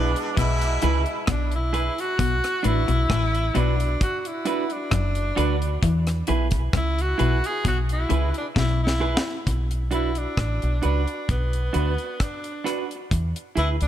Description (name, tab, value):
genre	roots reggae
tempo	66 BPM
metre	4/4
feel	straight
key	B dorian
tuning	A4 = 440 Hz
part	clear tenor saxophone	melody	0.0-13.9 s	B3 to G#4	-28 LUFS	equal	tape echo
part	clear horn section	second line	0.0-1.2 s	B2 to E4	-27 LUFS	right 1 dB	tape echo
part	clean electric guitar	accompaniment	0.0-13.8 s	D4 to B4	-30 LUFS	right 5 dB	spring reverb, tape echo
part	electric guitar at the edge of break-up	riff	0.0-8.8 s	F#2 to E3	-30 LUFS	left 8 dB	none
part	deep dub fingered electric bass	bass	0.0-13.9 s	F#1 to E2	-23 LUFS	equal	none
part	deep reggae drum kit	drums	0.2-13.9 s	hi-hat, kick drum, rim click, snare drum	-27 LUFS	equal	none
room	light reverb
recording	none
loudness	-21 LUFS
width	side -11 dB against mid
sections	0.0-9.5 A section; 9.5-13.9 B section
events	tenor saxophone solo 0.0-9.5; drum fill 8.6-9.5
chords	0.0 E; 2.2 Bm; 5.8 E; 9.5 Bm; 13.1 E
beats	0.37 1.28 | 2.19 3.10 4.01 4.92 | 5.83 6.74 7.64 8.55 | 9.46 10.38 11.29 12.20 | 13.11